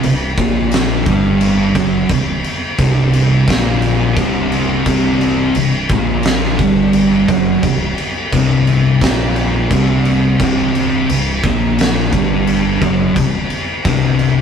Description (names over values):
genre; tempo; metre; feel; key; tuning
stoner and doom metal; 87 BPM; 4/4; straight; unclear; A4 = 440 Hz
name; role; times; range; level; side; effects
fuzz guitar; riff; 0.0-14.4 s; C2 to Bb3; -14 LUFS; equal; distortion
growling fingered electric bass; bass; 0.0-14.4 s; C1 to Bb1; -21 LUFS; equal; overdrive, tube saturation
oversized low-tuned drum kit; drums; 0.0-14.4 s; crash cymbal, kick drum, snare drum; -18 LUFS; equal; none
room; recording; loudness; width
moderate stone room reverb, RT60 1.5 s; rough rehearsal-room recording, tube saturation; -12 LUFS; side -7 dB against mid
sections
0.0-14.4 A section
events
none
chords
0.0 C5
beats
0.04 0.73 1.42 | 2.11 2.80 3.49 4.18 | 4.87 5.56 6.25 6.95 | 7.64 8.33 9.02 9.71 | 10.40 11.10 11.79 12.48 | 13.17 13.86